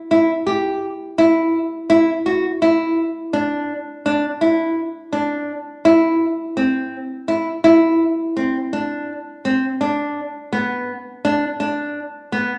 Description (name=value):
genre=progressive instrumental, progressive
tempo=167 BPM (eighths)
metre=11/8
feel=straight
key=unclear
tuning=A4 = 440 Hz
part: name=nylon-string guitar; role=solo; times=0.1-12.5 s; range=B3 to G4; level=-19 LUFS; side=equal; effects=none
room=moderate large studio reverb, RT60 1.2 s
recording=none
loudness=-19 LUFS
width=mono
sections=0.0-5.9 A section; 5.9-12.6 B section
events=none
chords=none